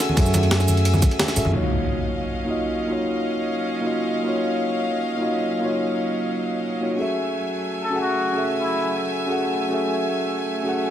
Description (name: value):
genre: liquid drum and bass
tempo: 176 BPM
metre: 4/4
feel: straight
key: unclear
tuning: A4 = 442 Hz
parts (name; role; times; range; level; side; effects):
- mellow tine electric piano; accompaniment; 0.0-10.9 s; Bb3 to Gb5; -23 LUFS; equal; ping-pong delay
- clear chamber string section; sustained chords; 0.0-10.9 s; Gb3 to Fb6; -28 LUFS; left 1 dB; sidechain pumping
- breakbeat sampler-style drum kit; drums; 0.0-1.4 s; hi-hat, ride cymbal, shaker, snare drum; -24 LUFS; right 1 dB; low-pass filter on hats, low-pass filter on cymbals, low-pass filter on perc, low-pass filter on snare
- congas; percussion; 0.1-1.5 s; none; -28 LUFS; equal; none
- upright bass; bass; 0.2-1.5 s; Gb2 to Ab2; -20 LUFS; equal; none
- electronic kick drum; drums; 0.2-1.1 s; none; -18 LUFS; equal; none
- impact; sound effects; 1.5-2.9 s; none; -27 LUFS; equal; none
- trumpet with cup mute; melody; 7.8-8.9 s; Fb4 to A4; -26 LUFS; left 2 dB; dub echo
room: moderate lush hall reverb, RT60 1.6 s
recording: none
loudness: -20 LUFS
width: side -10 dB against mid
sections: 0.0-1.5 A section; 1.5-10.9 B section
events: drop 0.0-1.5; impact 1.5-2.9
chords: 0.0 Gbm9; 1.5 Ebm9; 7.0 Gbm9